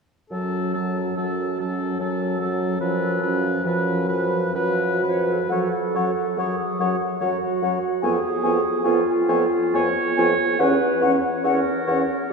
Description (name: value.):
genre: classical, slow romantic movement for wind quintet.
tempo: 60-75 BPM.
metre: 3/4.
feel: rubato.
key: F# minor.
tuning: A4 = 437 Hz.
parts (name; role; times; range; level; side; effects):
warm oboe; second line; 0.3-12.0 s; A4 to C#5; -29 LUFS; left 2 dB; none.
warm French horn; accompaniment; 0.3-12.0 s; E#3 to C#4; -26 LUFS; equal; none.
warm clarinet; accompaniment; 0.3-12.3 s; C#4 to C#5; -25 LUFS; right 2 dB; none.
mellow bassoon; bass; 0.3-12.3 s; E2 to F#2; -24 LUFS; right 2 dB; none.
concert flute; melody; 5.5-12.0 s; F#5 to G#5; -27 LUFS; left 5 dB; none.
room: wet cathedral reverb, RT60 4.1 s.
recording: none.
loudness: -20 LUFS.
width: side -4 dB against mid.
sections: 0.3-5.5 A section; 5.5-12.3 B section.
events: none.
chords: 0.3 F#m; 2.8 C#7/F#; 5.5 F#m; 8.0 C#7/E#; 10.6 F#7/E (rootless).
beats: | 0.31 1.18 2.00 | 2.81 3.65 4.55 | 5.51 6.39 7.22 | 8.04 8.86 9.75 | 10.61 11.45 12.32.